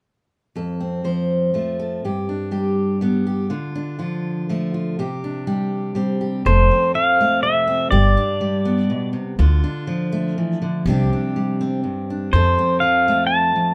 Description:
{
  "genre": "acoustic folk duo or small band",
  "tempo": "122 BPM",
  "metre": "3/4",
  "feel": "straight",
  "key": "F lydian",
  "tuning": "A4 = 440 Hz",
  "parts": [
    { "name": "fingerpicked steel-string acoustic guitar", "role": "accompaniment", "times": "0.6-13.7 s", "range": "F2 to C5", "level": "-24 LUFS", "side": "equal", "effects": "none" },
    { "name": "pedal steel guitar", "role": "melody", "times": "6.5-9.1, 12.3-13.7 s", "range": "C5 to A5", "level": "-19 LUFS", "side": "equal", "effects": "none" },
    { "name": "upright bass", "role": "bass", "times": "6.5-12.6 s", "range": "F1 to F2", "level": "-19 LUFS", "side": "equal", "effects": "none" }
  ],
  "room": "light reverb",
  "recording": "none",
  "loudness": "-20 LUFS",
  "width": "mono",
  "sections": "0.5-6.4 A section; 6.4-13.7 B section",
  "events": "none",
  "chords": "0.5 F; 2.0 G; 3.5 Dm; 5.0 Csus2; 6.4 F; 7.9 G; 9.4 Dm; 10.9 Csus2; 12.3 F"
}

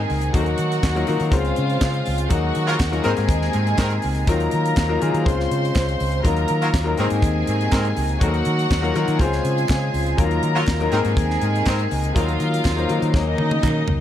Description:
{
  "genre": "disco",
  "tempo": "122 BPM",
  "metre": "4/4",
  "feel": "straight",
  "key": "Eb dorian",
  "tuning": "A4 = 439 Hz",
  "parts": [
    { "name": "warm studio string section", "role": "second line", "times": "0.0-14.0 s", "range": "Eb4 to C6", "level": "-26 LUFS", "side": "right 2 dB", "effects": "none" },
    { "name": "clear baby grand piano", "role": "accompaniment", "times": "0.0-14.0 s", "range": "Gb3 to C5", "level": "-24 LUFS", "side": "left 6 dB", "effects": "none" },
    { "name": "dark French horn section", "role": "sustained chords", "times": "0.0-13.9 s", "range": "C3 to C5", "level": "-30 LUFS", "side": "right 2 dB", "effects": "none" },
    { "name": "fingered electric bass", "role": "bass", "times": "0.0-14.0 s", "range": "Db2 to Eb3", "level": "-23 LUFS", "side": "equal", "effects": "none" },
    { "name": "tight funk drum kit", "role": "drums", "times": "0.1-14.0 s", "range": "hi-hat, kick drum, snare drum, toms", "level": "-23 LUFS", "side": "equal", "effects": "none" },
    { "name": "group handclap", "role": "percussion", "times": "0.8-13.8 s", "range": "none", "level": "-37 LUFS", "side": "right 4 dB", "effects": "none" },
    { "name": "warm horn section", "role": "stabs", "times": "2.7-11.8 s", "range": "Eb3 to Bb4", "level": "-29 LUFS", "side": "right 1 dB", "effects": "tape echo" }
  ],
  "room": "light reverb, studio reverb",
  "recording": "none",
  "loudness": "-18 LUFS",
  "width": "side -11 dB against mid",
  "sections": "0.0-14.0 A section",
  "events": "drum fill 13.1-14.0",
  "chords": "0.3 Ebmadd9; 1.3 Dbmaj7; 2.3 Ebmadd9; 3.0 Abadd9; 4.3 Ebmadd9; 5.3 Dbmaj7; 6.2 Ebmadd9; 7.0 Abadd9; 8.2 Ebmadd9; 9.2 Dbmaj7; 10.2 Ebmadd9; 10.9 Abadd9; 12.2 Ebmadd9; 13.1 Ebm7"
}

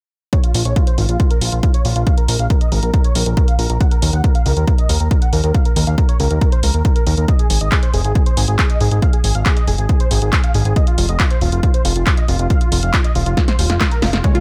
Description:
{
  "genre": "uplifting trance",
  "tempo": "138 BPM",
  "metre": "4/4",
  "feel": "straight",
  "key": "unclear",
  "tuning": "A4 = 440 Hz",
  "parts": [
    { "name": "supersaw chords", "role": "melody", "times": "0.3-14.4 s", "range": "F4 to Gb5", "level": "-26 LUFS", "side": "equal", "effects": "sidechain pumping, low-pass filter, dub echo" },
    { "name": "electronic kick drum", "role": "drums", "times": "0.3-14.3 s", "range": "none", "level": "-18 LUFS", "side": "equal", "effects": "none" },
    { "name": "punchy analog drum machine", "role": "drums", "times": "0.3-14.4 s", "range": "handclaps, hi-hat, snare drum", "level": "-24 LUFS", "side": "equal", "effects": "none" },
    { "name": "fat analog bass", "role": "bass", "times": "0.5-14.2 s", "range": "Eb1 to Eb2", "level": "-19 LUFS", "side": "equal", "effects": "sidechain pumping" },
    { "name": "analog string pad", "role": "sustained chords", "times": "14.2-14.4 s", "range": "Db3 to F4", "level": "-25 LUFS", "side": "equal", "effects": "ensemble chorus, sidechain pumping" },
    { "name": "unison pluck", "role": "arpeggios", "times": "14.2-14.4 s", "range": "Ab3 to F4", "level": "-22 LUFS", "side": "equal", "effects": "sidechain pumping" }
  ],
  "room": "little or no reverb",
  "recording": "none",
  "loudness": "-16 LUFS",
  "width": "mono",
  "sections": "0.3-14.4 A section",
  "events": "drum fill 13.4-14.2",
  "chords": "0.3 Bb5; 3.8 Eb5; 7.3 N.C.; 10.8 Ebsus2"
}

